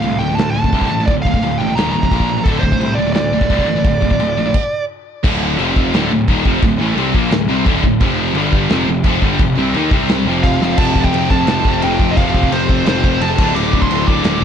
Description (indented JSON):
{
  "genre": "heavy metal",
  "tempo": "173 BPM",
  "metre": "4/4",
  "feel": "straight",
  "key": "D phrygian",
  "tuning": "A4 = 441 Hz",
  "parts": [
    { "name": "high-gain lead guitar", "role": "melody", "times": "0.0-4.8, 10.4-14.4 s", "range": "A4 to D6", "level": "-20 LUFS", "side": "right 3 dB", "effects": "distortion" },
    { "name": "high-gain distorted guitar", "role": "riff", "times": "0.0-14.4 s", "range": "D2 to Eb4", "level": "-21 LUFS", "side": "left 14 dB", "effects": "distortion" },
    { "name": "scooped high-gain guitar", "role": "riff", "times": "0.0-14.4 s", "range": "D2 to Eb4", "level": "-21 LUFS", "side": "right 11 dB", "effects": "distortion" },
    { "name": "fuzz picked electric bass", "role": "bass", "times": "0.0-14.4 s", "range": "D1 to Eb2", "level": "-20 LUFS", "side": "equal", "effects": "overdrive" },
    { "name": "modern studio drum kit", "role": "drums", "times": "0.0-14.3 s", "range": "china cymbal, crash cymbal, kick drum, snare drum", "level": "-17 LUFS", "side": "equal", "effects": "none" },
    { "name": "distorted electric guitar", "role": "riff", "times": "5.2-14.4 s", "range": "D2 to Eb4", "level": "-20 LUFS", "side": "equal", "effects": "distortion" }
  ],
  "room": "light reverb",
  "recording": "dark, warm production",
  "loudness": "-13 LUFS",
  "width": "side -8 dB against mid",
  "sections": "0.0-5.2 A section; 5.2-10.8 B section; 10.8-14.4 C section",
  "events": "stop 4.6-5.2; drum fill 10.6",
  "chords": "0.0 Dm; 1.8 Eb5; 2.1 Bb5; 2.5 D5; 4.6 N.C.; 5.2 D5; 5.6 F5; 5.9 Dm; 8.0 F5; 8.4 G5; 8.7 F5; 9.9 C5; 10.3 F5; 13.4 D5"
}